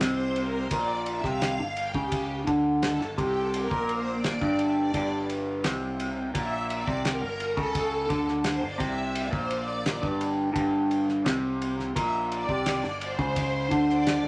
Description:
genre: psychedelic rock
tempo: 86 BPM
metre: 4/4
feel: straight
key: G dorian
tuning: A4 = 440 Hz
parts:
  - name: string machine, violins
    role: sustained chords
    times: 0.0-14.3 s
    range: G4 to G5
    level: -35 LUFS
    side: equal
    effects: ensemble chorus
  - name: electric guitar through a small old amp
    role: riff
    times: 0.0-14.3 s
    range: G2 to D3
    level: -29 LUFS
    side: equal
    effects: phaser
  - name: fuzz fingered electric bass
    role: bass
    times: 0.0-14.3 s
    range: G1 to D2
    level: -40 LUFS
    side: equal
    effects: overdrive
  - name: cloth-damped thuddy drum kit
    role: drums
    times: 0.0-14.2 s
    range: kick drum, ride cymbal, snare drum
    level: -35 LUFS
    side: equal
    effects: none
room: moderate club reverb, RT60 0.5 s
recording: none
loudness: -28 LUFS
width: mono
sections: 0.0-14.3 A section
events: string machine solo 0.0-14.3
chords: 0.0 Gm

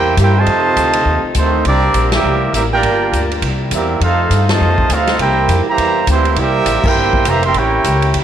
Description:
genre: jazz, big band swing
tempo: 203 BPM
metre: 4/4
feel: swing 60% on 8ths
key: unclear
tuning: A4 = 440 Hz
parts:
  - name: clear trumpet section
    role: melody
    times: 0.0-8.2 s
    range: A3 to C6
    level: -15 LUFS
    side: right 2 dB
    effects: tape echo
  - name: clear trombone section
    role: second line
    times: 0.0-8.2 s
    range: C3 to G4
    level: -20 LUFS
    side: right 8 dB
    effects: none
  - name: warm saxophone section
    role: sustained chords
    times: 0.0-8.2 s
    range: C3 to G4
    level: -26 LUFS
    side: left 8 dB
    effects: none
  - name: upright bass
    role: bass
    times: 0.0-8.2 s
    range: F1 to G2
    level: -17 LUFS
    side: left 1 dB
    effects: none
  - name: swinging big-band drum kit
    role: drums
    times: 0.2-8.2 s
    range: crash cymbal, hi-hat, kick drum, ride cymbal, snare drum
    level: -21 LUFS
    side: equal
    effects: none
room: moderate echo chamber reverb, RT60 1.5 s, small room ambience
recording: 1960s-style stereo with parts hard left and right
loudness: -11 LUFS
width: side -10 dB against mid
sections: 0.0-8.2 A section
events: band accent 2.1, 4.5, 6.8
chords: 0.5 F7; 1.7 C7; 2.8 Gm7; 3.4 C7; 4.0 F7; 5.2 C7; 7.6 A7b9

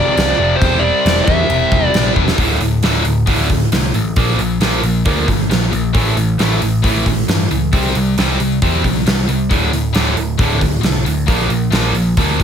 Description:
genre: hard rock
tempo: 135 BPM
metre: 4/4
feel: straight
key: D minor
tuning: A4 = 440 Hz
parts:
  - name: biting lead guitar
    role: melody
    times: 0.0-2.1 s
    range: C5 to E5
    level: -16 LUFS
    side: equal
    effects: overdrive, slapback echo
  - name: high-gain distorted guitar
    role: riff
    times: 0.0-12.4 s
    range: D2 to C4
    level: -19 LUFS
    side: left 12 dB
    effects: distortion
  - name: overdriven electric guitar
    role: riff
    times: 0.0-12.4 s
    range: D2 to C4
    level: -20 LUFS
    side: right 12 dB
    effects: none
  - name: overdriven picked electric bass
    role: bass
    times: 0.2-12.4 s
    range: D1 to G2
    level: -18 LUFS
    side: equal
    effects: none
  - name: gated 80s drum kit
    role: drums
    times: 0.2-12.4 s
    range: crash cymbal, hi-hat, kick drum, snare drum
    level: -18 LUFS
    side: equal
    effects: none
room: light reverb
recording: none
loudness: -12 LUFS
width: side -8 dB against mid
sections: 0.0-2.4 A section; 2.4-12.4 B section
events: drum fill 2.2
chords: 0.0 F5; 0.6 C/E; 2.4 D5; 4.2 Bb5; 5.9 A5; 7.7 C5; 9.5 D5; 11.3 Bb

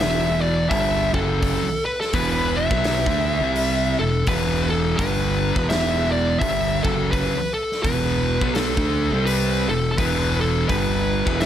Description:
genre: stoner and doom metal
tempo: 84 BPM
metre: 4/4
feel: swing 60% on 8ths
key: E minor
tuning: A4 = 440 Hz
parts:
  - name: fuzz lead guitar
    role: melody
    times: 0.0-11.5 s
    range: A4 to E5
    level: -24 LUFS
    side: equal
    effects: distortion, slapback echo
  - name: thick fuzz guitar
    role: riff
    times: 0.0-11.5 s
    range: E2 to D4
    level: -26 LUFS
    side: left 8 dB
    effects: distortion
  - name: thick fuzz guitar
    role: riff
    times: 0.0-11.5 s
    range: E2 to D4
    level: -25 LUFS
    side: right 8 dB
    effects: distortion
  - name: fingered electric bass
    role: bass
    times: 0.0-11.5 s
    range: E1 to D2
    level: -26 LUFS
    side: equal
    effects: overdrive
  - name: big rock drum kit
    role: drums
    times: 0.0-11.5 s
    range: hi-hat, kick drum, snare drum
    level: -27 LUFS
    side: equal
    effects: none
room: light reverb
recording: none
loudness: -18 LUFS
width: side -10 dB against mid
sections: 0.0-11.5 A section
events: none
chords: 0.0 Em

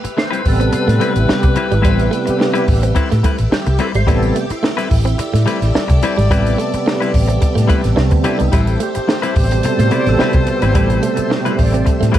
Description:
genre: funk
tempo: 108 BPM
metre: 4/4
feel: straight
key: A minor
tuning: A4 = 440 Hz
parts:
  - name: breathy tenor saxophone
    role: second line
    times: 0.0-12.2 s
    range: B4 to D5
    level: -24 LUFS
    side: left 3 dB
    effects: none
  - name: semi-hollow electric guitar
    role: accompaniment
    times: 0.0-12.2 s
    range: G3 to B4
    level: -22 LUFS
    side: left 6 dB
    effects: none
  - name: string machine, violins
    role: sustained chords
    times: 0.0-12.2 s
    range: G4 to E5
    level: -28 LUFS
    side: equal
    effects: ensemble chorus
  - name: direct-recorded clean electric guitar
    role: riff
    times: 0.0-12.2 s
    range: G3 to C4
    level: -24 LUFS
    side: right 5 dB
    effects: none
  - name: vintage muted fingered electric bass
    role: bass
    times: 0.0-12.1 s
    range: G#1 to A2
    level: -16 LUFS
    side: equal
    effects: none
  - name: compact cocktail drum kit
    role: drums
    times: 0.0-12.2 s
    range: hi-hat, kick drum, snare drum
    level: -18 LUFS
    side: equal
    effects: none
  - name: percussive tonewheel organ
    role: stabs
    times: 0.2-12.2 s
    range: B2 to D5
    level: -19 LUFS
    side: right 3 dB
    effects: overdrive, chorus vibrato, slow rotary speaker, tape echo
room: light reverb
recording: dark, warm production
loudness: -13 LUFS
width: side -12 dB against mid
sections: 0.0-12.2 A section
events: tonewheel organ solo 0.0-12.2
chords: 0.0 Am9

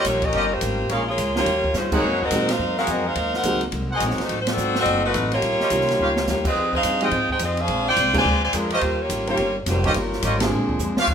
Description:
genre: jazz, big band swing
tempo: 212 BPM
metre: 4/4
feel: swing 62% on 8ths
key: Eb mixolydian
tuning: A4 = 436 Hz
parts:
  - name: clear saxophone section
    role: melody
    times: 0.0-11.0 s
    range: F3 to Ab5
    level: -22 LUFS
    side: equal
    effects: none
  - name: clear trumpet section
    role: stabs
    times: 0.0-11.1 s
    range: F4 to Gb5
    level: -26 LUFS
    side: equal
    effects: none
  - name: upright bass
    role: bass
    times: 0.0-11.1 s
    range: F1 to Bb2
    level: -28 LUFS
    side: equal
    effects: none
  - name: open jazz drum kit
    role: drums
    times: 0.0-11.1 s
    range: crash cymbal, hi-hat, kick drum, ride cymbal, snare drum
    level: -28 LUFS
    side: right 1 dB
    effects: none
  - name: picked steel-string acoustic guitar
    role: accompaniment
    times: 0.1-11.1 s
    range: Ab2 to Ab4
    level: -31 LUFS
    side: left 2 dB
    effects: none
  - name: warm concert grand piano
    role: accompaniment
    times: 1.4-3.6, 5.7-10.8 s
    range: D3 to G4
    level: -27 LUFS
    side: right 2 dB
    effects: none
room: moderate large studio reverb, RT60 1.0 s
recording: minimal, uncompressed stereo recording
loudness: -19 LUFS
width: side -7 dB against mid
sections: 0.0-11.1 A section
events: drum fill 1.8, 6.0, 10.8; band accent 1.9, 4.4, 6.4, 8.1, 10.4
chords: 0.0 Eb9; 0.9 Bbm7; 1.5 Eb9; 2.0 Ab9; 4.3 Adim7; 5.4 Eb9; 6.6 Fm7; 7.7 Bb9; 8.8 Eb9; 10.5 Bb9

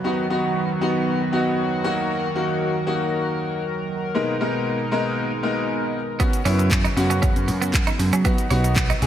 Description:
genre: dance-pop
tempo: 117 BPM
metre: 4/4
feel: straight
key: B major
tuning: A4 = 443 Hz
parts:
  - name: clear baby grand piano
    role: accompaniment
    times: 0.0-9.1 s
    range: G#3 to A#4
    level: -24 LUFS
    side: left 2 dB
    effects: wide subtle chorus, sidechain pumping
  - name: chorused pulse-width pad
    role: sustained chords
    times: 0.0-9.1 s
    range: B2 to A#4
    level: -25 LUFS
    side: right 1 dB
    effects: sidechain pumping
  - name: downlifter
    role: sound effects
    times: 0.0-2.1 s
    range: none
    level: barely audible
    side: none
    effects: none
  - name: twelve-string electric guitar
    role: riff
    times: 6.2-9.1 s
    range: B3 to D#4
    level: -28 LUFS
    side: right 6 dB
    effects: lush chorus
  - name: pop drum kit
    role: drums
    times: 6.2-9.1 s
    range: handclaps, hi-hat, kick drum, shaker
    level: -22 LUFS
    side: equal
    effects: gated reverb
  - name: vintage slap bass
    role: bass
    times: 6.5-9.1 s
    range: B1 to F#3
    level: -21 LUFS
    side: right 1 dB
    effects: sidechain pumping
room: moderate lush hall reverb, RT60 1.9 s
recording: bright 1980s-style digital production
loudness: -19 LUFS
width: side -10 dB against mid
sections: 0.0-9.1 A section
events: none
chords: 0.0 B; 1.8 D#m; 4.1 G#madd9; 6.2 F#sus4; 8.2 B

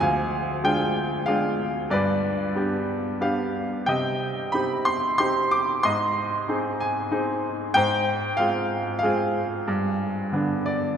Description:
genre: classical, lyrical solo piano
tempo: 93 BPM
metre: 3/4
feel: rubato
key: C harmonic minor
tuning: A4 = 440 Hz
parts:
  - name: bright baby grand piano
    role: solo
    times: 0.0-11.0 s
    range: D2 to D6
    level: -22 LUFS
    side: equal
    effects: none
room: wet cathedral reverb, RT60 6.7 s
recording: recorded in a church or concert hall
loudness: -22 LUFS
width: side -8 dB against mid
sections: 0.0-11.0 A section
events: grand piano fill 10.3-11.0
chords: 0.0 Ddim; 1.9 G; 3.9 Cm; 5.8 Ab; 7.7 Fm/Ab; 9.7 G

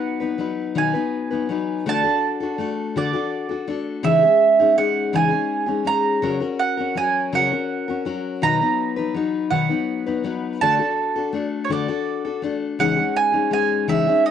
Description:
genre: acoustic folk duo or small band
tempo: 55 BPM (dotted quarters)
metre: 6/8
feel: straight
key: unclear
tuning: A4 = 439 Hz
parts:
  - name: mandolin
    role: melody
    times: 0.0-14.3 s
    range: C#5 to A#5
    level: -21 LUFS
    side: right 6 dB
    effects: cassette tape
  - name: picked steel-string acoustic guitar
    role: accompaniment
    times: 0.0-14.3 s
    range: B2 to B4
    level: -22 LUFS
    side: left 6 dB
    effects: cassette tape
room: moderate spring reverb, RT60 1.8 s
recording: home recording on cassette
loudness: -19 LUFS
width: side -8 dB against mid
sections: 0.0-14.3 A section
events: none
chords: 0.0 B; 1.9 D; 4.0 C#madd9; 6.2 F#/C#; 8.4 B; 10.6 D; 12.8 C#madd9

